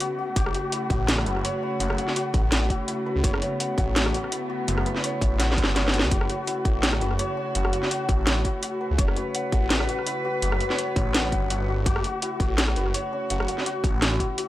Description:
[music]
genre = half-time drum and bass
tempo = 167 BPM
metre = 4/4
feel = swing 54% on 16ths, half-time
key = F# minor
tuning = A4 = 444 Hz
[part]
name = warm studio cello section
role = sustained chords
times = 0.0-14.5 s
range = C#3 to B4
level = -32 LUFS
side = equal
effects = sidechain pumping
[part]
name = santur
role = arpeggios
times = 0.0-14.5 s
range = C#4 to F#5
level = -29 LUFS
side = left 2 dB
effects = tape echo
[part]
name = drum and bass drum kit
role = drums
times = 0.0-14.5 s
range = hi-hat, rim click, snare drum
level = -26 LUFS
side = equal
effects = none
[part]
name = phased detuned saw bass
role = bass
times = 0.4-14.2 s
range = F#1 to C#2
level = -26 LUFS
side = equal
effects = phaser, tube saturation
[part]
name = electronic kick drum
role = drums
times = 0.4-14.3 s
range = none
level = -25 LUFS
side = equal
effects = none
[sound]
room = light reverb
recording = dry, gritty hardware recording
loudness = -22 LUFS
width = side -15 dB against mid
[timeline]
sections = 0.0-14.5 A section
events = drum fill 5.4-6.1; kick drops out 5.8-6.1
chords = 0.0 F#m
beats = 0.01 | 0.36 0.72 1.08 1.44 | 1.80 2.16 2.52 2.88 | 3.24 3.60 3.96 4.32 | 4.68 5.04 5.39 5.75 | 6.11 6.47 6.83 7.19 | 7.55 7.91 8.27 8.63 | 8.99 9.35 9.71 10.07 | 10.43 10.79 11.14 11.50 | 11.86 12.22 12.58 12.94 | 13.30 13.66 14.02 14.38

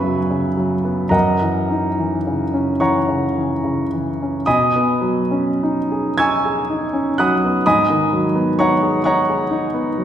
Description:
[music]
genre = classical, impressionist solo piano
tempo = 33-44 BPM (dotted quarters)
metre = 6/8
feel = rubato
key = B major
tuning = A4 = 440 Hz
[part]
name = clear concert grand piano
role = solo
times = 0.0-10.0 s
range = F#2 to G#6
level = -16 LUFS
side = equal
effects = none
[sound]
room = wet concert hall reverb, RT60 1.9 s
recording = heard from further back in the room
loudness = -16 LUFS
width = side -10 dB against mid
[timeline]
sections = 0.0-4.5 A section; 4.5-10.0 B section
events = none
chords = 0.0 F#11; 1.1 F#6; 4.5 B69; 7.6 G#m11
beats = | 1.13 2.81 | 4.46 6.17 | 7.64 9.04

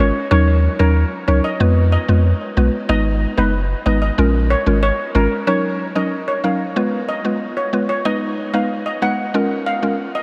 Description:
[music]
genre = dancehall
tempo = 93 BPM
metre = 4/4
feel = straight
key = Eb minor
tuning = A4 = 440 Hz
[part]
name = steel pan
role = melody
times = 0.0-10.2 s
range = Bb4 to Gb5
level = -24 LUFS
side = equal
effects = delay
[part]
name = mallet-like synth pluck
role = accompaniment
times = 0.0-10.0 s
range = Gb3 to Cb5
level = -22 LUFS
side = equal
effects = chorus
[part]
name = punchy sub bass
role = bass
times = 0.0-5.3 s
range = Gb1 to F2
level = -18 LUFS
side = equal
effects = none
[sound]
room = moderate huge ambient reverb, RT60 8.8 s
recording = dreamy mix soaked in reverb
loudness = -18 LUFS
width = mono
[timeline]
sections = 0.0-5.5 A section; 5.5-10.2 B section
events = none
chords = 0.3 Ebm7; 1.6 Fdim; 2.9 Abm; 4.2 Bbm7; 5.5 Ebm7; 6.8 Fdim; 8.1 Abm; 9.3 Bbm7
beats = | 0.31 0.96 1.60 2.25 | 2.89 3.54 4.18 4.83 | 5.47 6.12 6.76 7.41 | 8.05 8.70 9.34 9.99

